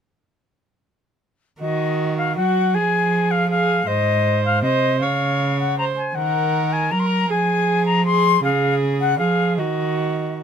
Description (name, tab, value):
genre	classical, renaissance-style consort dance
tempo	158 BPM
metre	3/4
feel	straight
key	Eb dorian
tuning	A4 = 442 Hz
part	silver concert flute	melody	1.6-10.4 s	Eb5 to C6	-21 LUFS	left 5 dB	none
part	warm viola	second line	1.6-10.4 s	Gb4 to Db5	-23 LUFS	right 5 dB	none
part	rich cello	bass	1.6-10.4 s	Ab2 to Gb3	-22 LUFS	right 2 dB	none
room	light reverb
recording	close, detailed microphones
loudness	-17 LUFS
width	side -7 dB against mid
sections	1.6-10.4 A section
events	none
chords	1.6 Ebm; 2.7 Fm; 3.9 Ab; 5.0 Db; 6.2 Ebm; 7.3 Fm; 8.4 Db; 9.6 Ebm